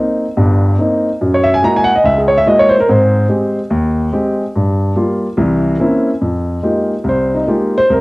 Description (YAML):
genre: solo jazz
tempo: 144 BPM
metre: 4/4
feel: swing 66% on 8ths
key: F minor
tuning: A4 = 441 Hz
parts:
  - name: warm grand piano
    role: solo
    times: 0.0-8.0 s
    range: G1 to Bb5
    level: -11 LUFS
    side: equal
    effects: cassette tape
room: moderate spring reverb, RT60 1.2 s, small room ambience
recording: home recording on cassette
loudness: -11 LUFS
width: side -22 dB against mid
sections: 0.0-6.2 A section; 6.2-8.0 A section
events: grand piano solo 0.0-6.2, 6.2-8.0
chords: 0.0 Cm7; 1.2 Gb9; 2.9 Abmaj7; 4.6 Gm7; 5.4 C7b9; 6.2 Fm11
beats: 0.38 0.79 | 1.21 1.63 2.05 2.46 | 2.88 3.30 3.72 4.13 | 4.55 4.97 5.39 5.81 | 6.22 6.64 7.06 7.48 | 7.90